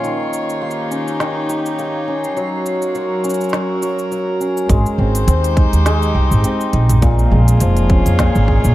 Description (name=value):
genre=folktronica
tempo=103 BPM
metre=4/4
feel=swing 56% on 16ths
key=Ab major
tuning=A4 = 441 Hz
part: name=warm string quartet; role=sustained chords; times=0.0-8.7 s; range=Eb3 to Db5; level=-22 LUFS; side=equal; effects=none
part: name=hammered dulcimer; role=arpeggios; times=0.0-8.7 s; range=Bb2 to Ab4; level=-20 LUFS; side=left 1 dB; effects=tape echo
part: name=organic electronic drum kit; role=drums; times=0.0-8.7 s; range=hi-hat, shaker, snare drum, toms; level=-24 LUFS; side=right 1 dB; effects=overdrive
part: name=backwards swelling texture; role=texture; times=0.0-4.7 s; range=C6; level=-38 LUFS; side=right 2 dB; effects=none
part: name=upright bass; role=bass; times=4.7-8.7 s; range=F1 to F2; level=-13 LUFS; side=equal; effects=none
part: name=electronic kick drum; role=drums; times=4.7-8.6 s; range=none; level=-15 LUFS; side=equal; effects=overdrive
room=little or no reverb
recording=none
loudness=-14 LUFS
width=side -15 dB against mid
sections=0.0-4.7 A section; 4.7-8.7 B section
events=filter sweep on drum 0.0-4.7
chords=0.0 Eb7; 2.4 Gb; 4.7 Abmaj7; 7.0 Bbm7